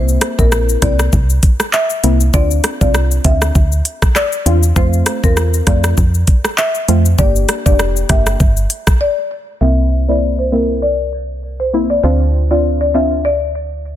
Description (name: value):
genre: dancehall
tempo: 99 BPM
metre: 4/4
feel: swing 56% on 16ths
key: unclear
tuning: A4 = 436 Hz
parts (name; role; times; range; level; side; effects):
- marimba with medium mallets; melody; 0.0-13.7 s; Bb4 to E5; -19 LUFS; left 2 dB; low-pass filter, tape echo
- deep mellow chord stab; accompaniment; 0.0-13.2 s; A3 to G4; -19 LUFS; left 1 dB; chorus, sidechain pumping, low-pass filter
- woody FM bass; bass; 0.0-14.0 s; F1 to F2; -15 LUFS; equal; none
- island pop drum kit; drums; 0.1-9.0 s; handclaps, hi-hat, kick drum, rim click, shaker; -14 LUFS; equal; none
room: little or no reverb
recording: dense, heavily limited modern master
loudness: -11 LUFS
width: side -12 dB against mid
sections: 0.0-9.6 A section; 9.6-14.0 B section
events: break 9.0-9.6; filter sweep 9.6-14.0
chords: 0.0 C7; 2.3 Dm7; 4.8 F; 7.2 Gm; 9.6 C7; 12.0 Dm7